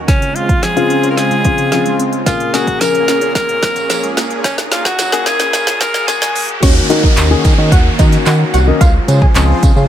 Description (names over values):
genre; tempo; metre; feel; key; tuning
dance-pop; 110 BPM; 4/4; straight; Eb dorian; A4 = 439 Hz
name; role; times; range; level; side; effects
supersaw pad; sustained chords; 0.0-9.9 s; Bb2 to C5; -22 LUFS; right 2 dB; sidechain pumping
riser and downlifter; sound effects; 2.2-9.9 s; none; -24 LUFS; right 1 dB; none
edgy alto saxophone; melody; 0.1-6.5 s; Db4 to Bb4; -18 LUFS; equal; dub echo
thumb-piano-like synth pluck; arpeggios; 0.1-6.4 s; Bb2 to Db4; -25 LUFS; right 3 dB; chorus, sidechain pumping, dub echo
deep house drum kit; drums; 0.1-9.8 s; crash cymbal, handclaps, hi-hat, kick drum, snare drum; -14 LUFS; equal; none
warm concert grand piano; accompaniment; 0.8-9.9 s; Db3 to Bb4; -18 LUFS; left 6 dB; sidechain pumping
tambourine; percussion; 2.3-9.9 s; none; -28 LUFS; right 9 dB; none
wide unison pluck; melody; 6.6-9.6 s; Db4 to Ab5; -21 LUFS; right 2 dB; sidechain pumping, dub echo
chorused synth bass; bass; 6.6-9.9 s; C2 to Eb3; -13 LUFS; equal; sidechain pumping
room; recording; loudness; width
digital ambience; high-pass filter; -10 LUFS; side -10 dB against mid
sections
0.0-6.6 A section; 6.6-9.9 B section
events
build-up 0.0-6.6; drum fill 0.0-6.6; filter sweep 0.0-6.6; riser 2.2-6.6; drop 6.6-9.9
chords
0.1 Dbmaj7; 2.3 Bbm7; 6.6 Ebm7; 8.8 Dbmaj7